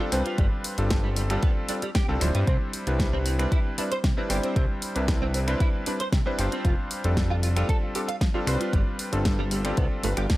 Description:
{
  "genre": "nu-disco, nu disco",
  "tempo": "115 BPM",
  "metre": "4/4",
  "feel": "straight",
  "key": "C major",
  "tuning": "A4 = 441 Hz",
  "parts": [
    { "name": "clear electric grand piano", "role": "accompaniment", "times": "0.0-10.4 s", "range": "G3 to C5", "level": "-30 LUFS", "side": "equal", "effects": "sidechain pumping, analog delay" },
    { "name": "direct-recorded clean electric guitar", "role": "riff", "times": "0.0-10.4 s", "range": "G2 to F5", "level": "-33 LUFS", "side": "right 2 dB", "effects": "ensemble chorus, analog delay" },
    { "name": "fat analog bass", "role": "bass", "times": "0.1-10.3 s", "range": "D1 to G2", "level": "-26 LUFS", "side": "equal", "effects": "tube saturation" },
    { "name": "pop drum kit", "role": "drums", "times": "0.1-10.4 s", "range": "finger snaps, hi-hat, snare drum", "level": "-32 LUFS", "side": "equal", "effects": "studio reverb" },
    { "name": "electronic kick drum", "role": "drums", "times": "0.4-10.4 s", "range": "none", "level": "-24 LUFS", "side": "equal", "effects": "studio reverb" }
  ],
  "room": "little or no reverb",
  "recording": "none",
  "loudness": "-23 LUFS",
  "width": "side -17 dB against mid",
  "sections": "0.0-10.4 A section",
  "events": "none",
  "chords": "0.4 G7sus4; 2.5 Cmaj7; 6.6 F6"
}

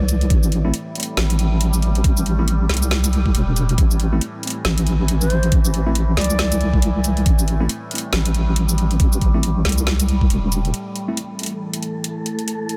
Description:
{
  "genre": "deep dubstep",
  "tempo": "138 BPM",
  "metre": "4/4",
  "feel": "swing 59% on 16ths, half-time",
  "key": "A minor",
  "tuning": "A4 = 440 Hz",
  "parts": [
    { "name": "overtone-sweeping drone", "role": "sustained chords", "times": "0.0-12.8 s", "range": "A2 to G3", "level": "-30 LUFS", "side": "equal", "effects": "chorus, built-in reverb" },
    { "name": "deep soft wobble bass", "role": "bass", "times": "0.0-10.7 s", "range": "E1 to C2", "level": "-20 LUFS", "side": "equal", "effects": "chorus" },
    { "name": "garage drum kit", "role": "drums", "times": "0.1-12.8 s", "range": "hi-hat, shaker, snare drum", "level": "-27 LUFS", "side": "equal", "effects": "none" },
    { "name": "electronic kick drum", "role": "drums", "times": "0.3-10.3 s", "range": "none", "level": "-19 LUFS", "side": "equal", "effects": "none" },
    { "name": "mellow tine electric piano", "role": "stabs", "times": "0.6-11.2 s", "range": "A3 to E4", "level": "-31 LUFS", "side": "equal", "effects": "overdrive, low-pass filter, dub echo" },
    { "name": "breathy reedy low ney", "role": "melody", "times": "5.2-6.8 s", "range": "C5 to D5", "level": "-31 LUFS", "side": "equal", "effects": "dub echo" },
    { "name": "wind-like tuned noise texture", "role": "texture", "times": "10.9-12.8 s", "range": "A3 to A4", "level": "-33 LUFS", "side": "equal", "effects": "built-in reverb" }
  ],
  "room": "digital ambience",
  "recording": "dense, heavily limited modern master",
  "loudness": "-19 LUFS",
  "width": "mono",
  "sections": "0.0-10.7 A section; 10.7-12.8 B section",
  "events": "drop 0.0-10.7; filter sweep on synth drone 10.7-12.8",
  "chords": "0.0 Am; 10.7 A5"
}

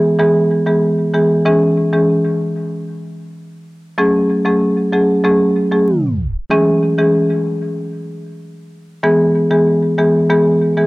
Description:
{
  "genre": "dancehall",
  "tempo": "95 BPM",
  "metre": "4/4",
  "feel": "straight",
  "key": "C# minor",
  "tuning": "A4 = 440 Hz",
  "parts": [
    { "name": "marimba with medium mallets", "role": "solo", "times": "0.0-10.9 s", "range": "E3 to G#4", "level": "-13 LUFS", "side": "equal", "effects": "cassette tape" }
  ],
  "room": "light reverb, studio ambience",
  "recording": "home recording on cassette, tape stop",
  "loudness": "-12 LUFS",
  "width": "side -22 dB against mid",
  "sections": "0.0-6.5 A section; 6.5-10.9 B section",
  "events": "tape stop 5.9-6.5",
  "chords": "0.0 E; 1.5 C#m; 4.0 F#madd9; 6.5 C#m; 9.0 E"
}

